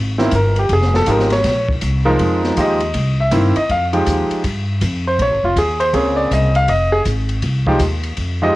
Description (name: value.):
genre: jazz piano trio.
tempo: 160 BPM.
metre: 4/4.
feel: swing 64% on 8ths.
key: F minor.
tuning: A4 = 444 Hz.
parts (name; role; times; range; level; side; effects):
upright bass; bass; 0.0-8.5 s; F1 to G2; -18 LUFS; equal; none.
clear concert grand piano; melody; 0.2-8.6 s; Db3 to F5; -16 LUFS; equal; cassette tape, plate reverb.
open jazz drum kit; drums; 0.2-8.3 s; hi-hat, kick drum, ride cymbal, snare drum; -25 LUFS; equal; cassette tape.
room: light reverb.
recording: home recording on cassette.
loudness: -14 LUFS.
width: side -18 dB against mid.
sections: 0.0-3.7 A section; 3.7-8.6 A section.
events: grand piano solo 0.0-8.6.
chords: 0.0 C7(no3) (rootless); 0.7 Fm9; 1.4 Bbsus2; 2.2 Fm9; 2.9 C7#9; 3.7 Fm9; 5.2 Bbm9; 6.7 Fm7.